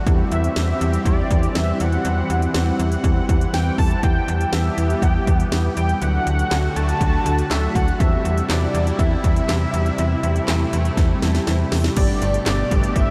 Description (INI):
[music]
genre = synth-pop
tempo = 121 BPM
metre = 4/4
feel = straight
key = unclear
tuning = A4 = 439 Hz
[part]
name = mellow synth brass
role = accompaniment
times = 0.0-13.1 s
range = F#3 to G4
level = -29 LUFS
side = equal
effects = chorus
[part]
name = lush unison pad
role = sustained chords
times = 0.0-13.1 s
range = B2 to F#5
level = -30 LUFS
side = equal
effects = chorus, phaser
[part]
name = slap-like FM bass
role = bass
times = 0.1-13.1 s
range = G1 to E2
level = -23 LUFS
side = equal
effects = none
[part]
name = house drum kit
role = drums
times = 0.1-13.1 s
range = crash cymbal, handclaps, hi-hat, kick drum, snare drum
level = -24 LUFS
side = equal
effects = none
[part]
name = unison lead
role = melody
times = 0.3-13.1 s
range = D5 to A5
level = -28 LUFS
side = equal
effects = analog chorus, tape echo
[sound]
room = moderate huge ambient reverb, RT60 8.3 s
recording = dreamy mix soaked in reverb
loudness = -19 LUFS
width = mono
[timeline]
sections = 0.0-12.0 A section; 12.0-13.1 B section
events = drum fill 11.0-12.0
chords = 0.1 C/E; 4.0 Em; 6.0 D; 8.0 C; 12.0 Gadd9